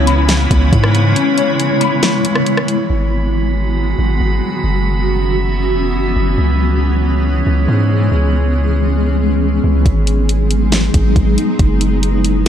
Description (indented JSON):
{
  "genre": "hip hop, atmospheric cloud-rap",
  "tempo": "138 BPM",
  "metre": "4/4",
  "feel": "half-time",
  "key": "G# minor",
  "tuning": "A4 = 442 Hz",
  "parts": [
    { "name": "granular cloud pad", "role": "sustained chords", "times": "0.0-12.5 s", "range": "C#3 to B4", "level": "-17 LUFS", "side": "equal", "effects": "built-in reverb, sidechain pumping" },
    { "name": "mellow electric guitar", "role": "arpeggios", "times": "0.0-2.9 s", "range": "C#4 to B5", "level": "-20 LUFS", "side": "left 7 dB", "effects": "ensemble chorus, ping-pong delay" },
    { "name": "long sustained 808-style bass", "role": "bass", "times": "0.0-12.5 s", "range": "E1 to G#2", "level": "-14 LUFS", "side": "equal", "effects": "none" },
    { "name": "drifting glass-harmonics texture", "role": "texture", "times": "0.0-9.8 s", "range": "E4 to B5", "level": "-24 LUFS", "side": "right 2 dB", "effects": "chorus, built-in reverb" },
    { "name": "smooth R&B drum kit", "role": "drums", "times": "0.1-2.8, 9.9-12.5 s", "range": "hi-hat, kick drum, rim click, snare drum", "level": "-16 LUFS", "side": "equal", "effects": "vintage 12-bit sampler grit" }
  ],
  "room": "light reverb, digital ambience",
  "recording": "none",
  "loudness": "-12 LUFS",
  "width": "side -9 dB against mid",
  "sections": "0.0-2.9 A section; 2.9-9.9 B section; 9.9-12.5 C section",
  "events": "break 1.2-2.9",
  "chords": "0.0 C#m7; 2.9 G#m7; 4.6 F#7sus4; 6.4 C#m7; 9.9 G#m7; 11.6 F#7sus4"
}